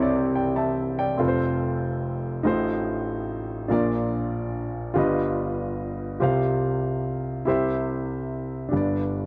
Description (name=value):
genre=gospel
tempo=48 BPM (dotted quarters)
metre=6/8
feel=straight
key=unclear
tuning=A4 = 441 Hz
part: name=warm concert grand piano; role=solo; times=0.0-9.3 s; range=F1 to A5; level=-26 LUFS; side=equal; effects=none
room=light reverb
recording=dry, close 1970s-style studio recording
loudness=-26 LUFS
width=mono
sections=0.0-8.7 A section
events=none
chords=0.0 C; 1.2 F; 2.5 F7/A; 3.7 Bb; 5.0 Gaug7; 6.2 Csus4; 7.5 C; 8.7 G